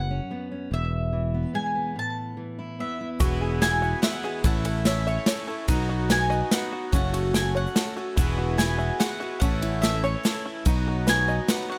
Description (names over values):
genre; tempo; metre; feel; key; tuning
indie folk with a building arrangement; 145 BPM; 3/4; straight; E major; A4 = 440 Hz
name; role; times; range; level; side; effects
mandolin; melody; 0.0-11.8 s; C#5 to A5; -32 LUFS; equal; slapback echo
fingerpicked steel-string acoustic guitar; accompaniment; 0.0-4.5 s; E2 to E4; -36 LUFS; equal; none
fingered electric bass; bass; 0.0-11.4 s; E1 to B1; -29 LUFS; equal; none
picked twelve-string acoustic guitar; accompaniment; 3.2-11.8 s; E2 to F#4; -36 LUFS; equal; none
hand-pumped harmonium; sustained chords; 3.2-11.8 s; E3 to B4; -38 LUFS; equal; none
open-back banjo; arpeggios; 3.2-11.8 s; C#4 to F#5; -34 LUFS; equal; slapback echo
natural country drum kit; drums; 3.2-11.6 s; kick drum, ride cymbal, snare drum; -28 LUFS; equal; none
egg shaker; percussion; 3.2-11.6 s; none; -42 LUFS; equal; none
room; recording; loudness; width
little or no reverb; none; -25 LUFS; mono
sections
0.0-3.2 A section; 3.2-11.8 B section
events
break 2.0-3.2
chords
0.0 Bsus2/F#; 0.7 E; 2.0 Asus2; 3.2 Eadd9; 4.4 A; 5.7 B; 6.9 F#m; 8.2 Eadd9; 9.4 A; 10.7 B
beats
0.30 | 0.71 1.13 1.54 | 1.96 2.37 2.79 | 3.20 3.62 4.03 | 4.44 4.86 5.27 | 5.68 6.10 6.51 | 6.93 7.34 7.76 | 8.17 8.59 9.00 | 9.41 9.83 10.24 | 10.66 11.07 11.49